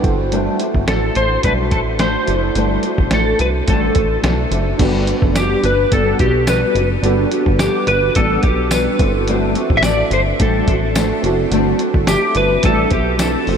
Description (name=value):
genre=indie pop, bedroom pop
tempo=107 BPM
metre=4/4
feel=straight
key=G major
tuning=A4 = 440 Hz
part: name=nylon-string guitar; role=accompaniment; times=0.0-13.6 s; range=G3 to C5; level=-20 LUFS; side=left 2 dB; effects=ensemble chorus, vibrato effect, low-pass filter
part: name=warbly lo-fi synth keys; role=accompaniment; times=0.0-13.6 s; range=C4 to F#5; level=-25 LUFS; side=right 7 dB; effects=chorus, cassette tape, low-pass filter
part: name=plucky analog bass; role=bass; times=0.0-13.6 s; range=F#1 to C2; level=-20 LUFS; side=equal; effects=none
part: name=lo-fi sampler-style drum kit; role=drums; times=0.0-13.6 s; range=crash cymbal, hi-hat, kick drum, snare drum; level=-21 LUFS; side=equal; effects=none
part: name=clean lap steel guitar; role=melody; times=0.9-13.6 s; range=G4 to E5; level=-18 LUFS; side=equal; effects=ensemble chorus, low-pass filter, diffuse ambient delay
part: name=tambourine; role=percussion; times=5.4-13.3 s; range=none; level=-34 LUFS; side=left 7 dB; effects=none
room=moderate huge ambient reverb, RT60 8.1 s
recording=dreamy mix soaked in reverb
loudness=-13 LUFS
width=side -7 dB against mid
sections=0.0-4.8 A section; 4.8-13.6 B section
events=synth keys fill 0.0-0.3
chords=0.0 D7; 4.8 Gmaj7; 9.0 D7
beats=| 0.32 0.88 1.44 2.00 | 2.56 3.12 3.68 4.24 | 4.80 5.36 5.92 6.48 | 7.04 7.60 8.16 8.72 | 9.28 9.84 10.40 10.96 | 11.52 12.07 12.63 13.20